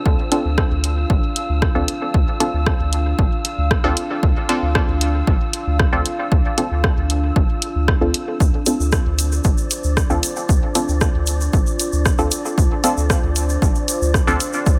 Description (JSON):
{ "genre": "dub techno", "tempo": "115 BPM", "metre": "4/4", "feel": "straight", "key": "D minor", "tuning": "A4 = 436 Hz", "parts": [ { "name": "dark analog pad", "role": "sustained chords", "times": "0.0-14.8 s", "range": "D4 to F5", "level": "-29 LUFS", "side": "equal", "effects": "chorus, phaser, vintage 12-bit sampler grit, sidechain pumping" }, { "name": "filtered dub chord stab", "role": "stabs", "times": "0.0-14.4 s", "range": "C4 to A4", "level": "-26 LUFS", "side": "equal", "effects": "phaser, sidechain pumping, dub echo" }, { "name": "wind-like tuned noise texture", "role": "texture", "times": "0.0-14.8 s", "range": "D5 to E6", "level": "-35 LUFS", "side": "equal", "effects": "built-in reverb, sidechain pumping" }, { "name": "soft dub sub bass", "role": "bass", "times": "0.1-14.8 s", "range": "A1 to D2", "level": "-23 LUFS", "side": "equal", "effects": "sidechain pumping" }, { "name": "electronic kick drum", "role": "drums", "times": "0.1-14.8 s", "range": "none", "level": "-20 LUFS", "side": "equal", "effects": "none" }, { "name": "punchy analog drum machine", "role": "drums", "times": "0.3-14.5 s", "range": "hi-hat, rim click", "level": "-25 LUFS", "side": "equal", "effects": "none" }, { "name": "tube shaker", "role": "percussion", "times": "8.4-14.8 s", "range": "none", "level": "-29 LUFS", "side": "equal", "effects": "none" } ], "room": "digital ambience", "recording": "none", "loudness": "-19 LUFS", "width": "mono", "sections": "0.0-14.8 A section", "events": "none", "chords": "0.0 Dm7", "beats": "| 0.06 0.58 1.10 1.62 | 2.14 2.67 3.19 3.71 | 4.23 4.75 5.27 5.79 | 6.32 6.84 7.36 7.88 | 8.40 8.93 9.45 9.97 | 10.49 11.01 11.53 12.06 | 12.58 13.10 13.62 14.14 | 14.66" }